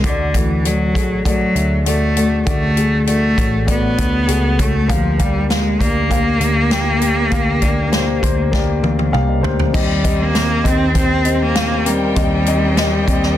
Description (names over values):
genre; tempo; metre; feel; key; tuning
piano-driven pop; 99 BPM; 4/4; straight; unclear; A4 = 441 Hz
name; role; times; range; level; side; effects
rich cello; melody; 0.0-13.4 s; D3 to C4; -18 LUFS; equal; none
dark baby grand piano; accompaniment; 0.0-13.4 s; D3 to G5; -20 LUFS; left 3 dB; none
vintage muted picked electric bass; bass; 0.0-13.4 s; A1 to Eb2; -19 LUFS; equal; none
natural country drum kit; drums; 0.0-13.3 s; crash cymbal, hi-hat, kick drum, snare drum, toms; -20 LUFS; equal; none
warm studio string section; sustained chords; 9.7-13.4 s; C4 to G5; -26 LUFS; equal; none
room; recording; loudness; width
light reverb; dense, heavily limited modern master; -14 LUFS; side -12 dB against mid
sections
0.0-9.7 A section; 9.7-13.4 B section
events
drum fill 8.5-9.7; grand piano fill 8.8-9.7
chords
0.0 D; 4.9 Gm7/D; 9.7 Eb6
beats
| 0.04 0.65 1.25 1.86 | 2.47 3.07 3.68 4.29 | 4.89 5.50 6.10 6.71 | 7.32 7.92 8.53 9.14 | 9.74 10.35 10.96 11.56 | 12.17 12.78